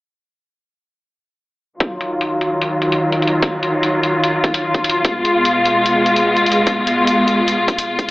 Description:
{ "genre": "heavy wobble dubstep", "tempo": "148 BPM", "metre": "4/4", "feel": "half-time", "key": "Eb minor", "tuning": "A4 = 440 Hz", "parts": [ { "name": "warm symphonic string section", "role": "sustained chords", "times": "1.8-8.1 s", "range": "Cb3 to F4", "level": "-15 LUFS", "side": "equal", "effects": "sidechain pumping, low-pass filter" }, { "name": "electronic hi-hat", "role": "drums", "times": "1.8-8.1 s", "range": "none", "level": "-23 LUFS", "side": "left 1 dB", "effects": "low-pass filter on hats, low-pass filter on room" }, { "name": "electronic kick drum", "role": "drums", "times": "1.8-8.1 s", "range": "none", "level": "-20 LUFS", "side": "equal", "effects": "high-pass filter on kick" } ], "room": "moderate digital room reverb, RT60 1.3 s", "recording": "AM radio sound", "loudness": "-14 LUFS", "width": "side -19 dB against mid", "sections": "1.8-8.1 A section", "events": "filter sweep on string section 1.8-8.1", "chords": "1.8 Ebmadd9; 5.0 Fdim" }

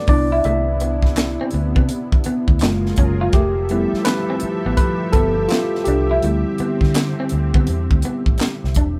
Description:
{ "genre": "R&B, neo-soul", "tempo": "83 BPM", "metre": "4/4", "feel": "swing 64% on 16ths", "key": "unclear", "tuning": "A4 = 442 Hz", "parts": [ { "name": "tine electric piano", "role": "accompaniment", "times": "0.0-9.0 s", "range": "G3 to E5", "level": "-24 LUFS", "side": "equal", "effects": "none" }, { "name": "lush unison pad", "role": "sustained chords", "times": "0.0-9.0 s", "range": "C3 to E5", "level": "-30 LUFS", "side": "equal", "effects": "chorus" }, { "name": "electric guitar through a small old amp", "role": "second line", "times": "0.1-9.0 s", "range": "A3 to E#4", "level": "-26 LUFS", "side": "equal", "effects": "none" }, { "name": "vintage muted fingered electric bass", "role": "bass", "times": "0.1-9.0 s", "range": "E1 to D3", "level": "-24 LUFS", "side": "equal", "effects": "none" }, { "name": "tight funk drum kit", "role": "drums", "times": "0.1-9.0 s", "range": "handclaps, hi-hat, kick drum, snare drum", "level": "-20 LUFS", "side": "equal", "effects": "none" } ], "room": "light reverb", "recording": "band playing live in one room", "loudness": "-18 LUFS", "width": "mono", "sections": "0.0-9.0 A section", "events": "tine electric piano solo 0.0-9.0", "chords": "0.1 Cmaj9; 2.6 F#maj9; 3.3 Fmaj9; 6.2 D9sus4" }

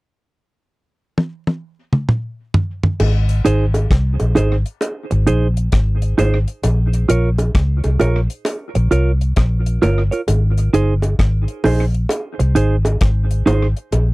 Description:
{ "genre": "roots reggae", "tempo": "66 BPM", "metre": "4/4", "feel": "swing 65% on 16ths", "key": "Ab major", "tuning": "A4 = 440 Hz", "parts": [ { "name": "deep reggae drum kit", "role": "drums", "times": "1.2-14.1 s", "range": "crash cymbal, hi-hat, kick drum, rim click, toms", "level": "-19 LUFS", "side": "equal", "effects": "none" }, { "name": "vintage muted fingered electric bass", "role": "bass", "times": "3.0-14.1 s", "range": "G1 to Db2", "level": "-16 LUFS", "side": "equal", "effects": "none" }, { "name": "bongos", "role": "percussion", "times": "3.0-14.1 s", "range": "none", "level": "-22 LUFS", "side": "right 1 dB", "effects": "none" }, { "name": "clean electric guitar", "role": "accompaniment", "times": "3.4-13.7 s", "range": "Eb4 to Db5", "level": "-19 LUFS", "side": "right 3 dB", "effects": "tape echo" } ], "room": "little or no reverb", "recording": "dry, close 1970s-style studio recording", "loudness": "-15 LUFS", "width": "side -22 dB against mid", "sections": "0.0-3.0 A section; 3.0-10.3 B section; 10.3-14.1 C section", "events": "drum fill 1.2-3.0", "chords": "0.0 N.C.; 3.0 Ab; 6.6 Bbm; 10.3 Ab" }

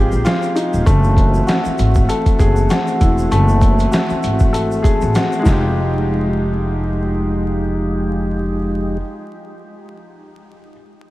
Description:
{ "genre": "hip hop, boom-bap hip-hop", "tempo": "98 BPM", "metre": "4/4", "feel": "swing 56% on 16ths", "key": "unclear", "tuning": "A4 = 440 Hz", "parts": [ { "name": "warm upright piano", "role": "accompaniment", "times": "0.0-10.7 s", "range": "Ab3 to A4", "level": "-21 LUFS", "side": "left 2 dB", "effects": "cassette tape, high-pass filter, low-pass filter" }, { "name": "mellow tonewheel organ", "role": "sustained chords", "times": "0.0-9.0 s", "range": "Fb3 to G5", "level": "-22 LUFS", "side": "equal", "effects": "slow rotary speaker, high-pass filter, low-pass filter" }, { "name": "upright bass", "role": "bass", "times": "0.0-9.0 s", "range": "Eb1 to Bb1", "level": "-18 LUFS", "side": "equal", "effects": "none" }, { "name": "tube shaker", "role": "percussion", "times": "0.1-6.0 s", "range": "none", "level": "-42 LUFS", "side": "right 5 dB", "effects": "none" }, { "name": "boom bap sampler-style drum kit", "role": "drums", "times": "0.3-5.6 s", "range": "hi-hat, kick drum, snare drum", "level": "-17 LUFS", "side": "equal", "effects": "none" } ], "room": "light reverb", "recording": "vinyl crackle", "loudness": "-14 LUFS", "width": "side -17 dB against mid", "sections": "0.0-5.8 A section; 5.8-8.2 B section", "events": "none", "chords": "0.0 Fm9; 0.9 Gbm9; 5.5 Fm9" }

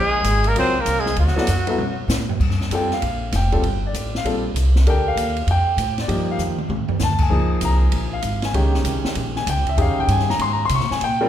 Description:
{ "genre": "modal jazz", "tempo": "195 BPM", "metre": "4/4", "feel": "swing 63% on 8ths", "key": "G phrygian", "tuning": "A4 = 438 Hz", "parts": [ { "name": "warm trumpet", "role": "melody", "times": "0.0-2.1 s", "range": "F#4 to C5", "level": "-21 LUFS", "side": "left 2 dB", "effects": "none" }, { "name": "bright tenor saxophone", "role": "second line", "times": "0.0-2.1 s", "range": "F#3 to C4", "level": "-27 LUFS", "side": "right 5 dB", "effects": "none" }, { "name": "upright bass", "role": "bass", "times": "0.0-11.3 s", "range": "F1 to C3", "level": "-20 LUFS", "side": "equal", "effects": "none" }, { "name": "open jazz drum kit", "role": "drums", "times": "0.2-11.1 s", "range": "crash cymbal, hi-hat, kick drum, ride cymbal, snare drum, toms", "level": "-26 LUFS", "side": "equal", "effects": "none" }, { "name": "warm concert grand piano", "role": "accompaniment", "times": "0.6-11.3 s", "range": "Eb3 to Db6", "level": "-22 LUFS", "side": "left 1 dB", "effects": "none" } ], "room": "light reverb", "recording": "none", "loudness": "-17 LUFS", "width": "side -10 dB against mid", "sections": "0.0-2.4 A section; 2.4-11.3 B section", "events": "drum fill 1.8-2.4, 6.4-7.0", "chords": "0.0 Bbm9; 1.2 D; 2.4 Gm9; 7.3 Bbm9" }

